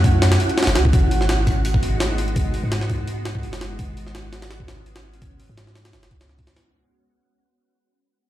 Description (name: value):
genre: drum and bass, jungle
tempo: 168 BPM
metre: 4/4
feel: swing 54% on 16ths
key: unclear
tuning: A4 = 441 Hz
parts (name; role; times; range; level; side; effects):
- granular cloud pad; sustained chords; 0.0-6.6 s; G#3 to F#4; -28 LUFS; right 2 dB; built-in reverb
- long sustained 808-style bass; bass; 0.0-6.5 s; F#1 to G#2; -21 LUFS; equal; tube saturation
- jungle sampler-style drum kit; drums; 0.0-6.6 s; hi-hat, kick drum, snare drum; -21 LUFS; equal; none
- wind-like tuned noise texture; texture; 0.0-6.7 s; F#4 to F#5; -31 LUFS; equal; built-in reverb
room: little or no reverb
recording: played on a big sound system in a bare room, large studio reverb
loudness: -17 LUFS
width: side -14 dB against mid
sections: 0.0-6.6 A section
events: fade-out 0.0-6.6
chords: 0.0 F#m7; 0.9 G#m7